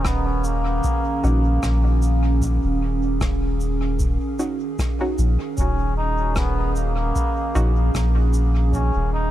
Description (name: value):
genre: ambient dub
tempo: 76 BPM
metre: 4/4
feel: swing 56% on 16ths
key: Eb minor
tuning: A4 = 440 Hz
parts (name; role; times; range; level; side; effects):
- trombone with straight mute; melody; 0.0-9.3 s; Bb3 to Eb4; -28 LUFS; left 1 dB; dub echo
- warbly tape-like pad; sustained chords; 0.0-9.3 s; Eb3 to F5; -26 LUFS; right 4 dB; chorus, built-in reverb
- soft dub sub bass; bass; 0.0-9.3 s; Eb1 to Bb1; -20 LUFS; equal; none
- rim click and shaker; drums; 0.0-8.9 s; none; -35 LUFS; equal; dub echo
- electronic kick drum; drums; 0.1-8.9 s; none; -26 LUFS; equal; none
- filtered dub chord stab; stabs; 1.2-7.7 s; Db4 to Gb4; -31 LUFS; equal; chorus, dub echo
room: small room ambience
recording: none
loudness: -18 LUFS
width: side -13 dB against mid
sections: 0.0-9.3 A section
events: none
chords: 0.0 Ebm7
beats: 0.05 0.84 1.63 | 2.42 3.21 4.00 4.79 | 5.58 6.37 7.16 7.95 | 8.74